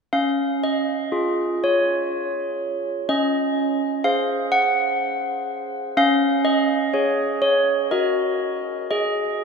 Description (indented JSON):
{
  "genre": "classical, tune for handbells",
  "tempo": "62 BPM",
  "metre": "3/4",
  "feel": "straight",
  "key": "Db major",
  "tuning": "A4 = 440 Hz",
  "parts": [
    { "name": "handbells", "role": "solo", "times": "0.1-9.4 s", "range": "Db4 to Gb5", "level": "-19 LUFS", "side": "equal", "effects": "none" }
  ],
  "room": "wet cathedral reverb, RT60 6.3 s",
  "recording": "heard from further back in the room",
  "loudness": "-19 LUFS",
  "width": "side -5 dB against mid",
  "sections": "0.1-9.4 A section",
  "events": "none",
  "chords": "0.1 Db; 3.1 Ab7/Db; 6.0 Db5; 7.9 Ebm/Gb; 8.9 Ab5",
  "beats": "| 0.13 1.12 2.10 | 3.07 4.03 4.99 | 5.96 6.93 7.90 | 8.88"
}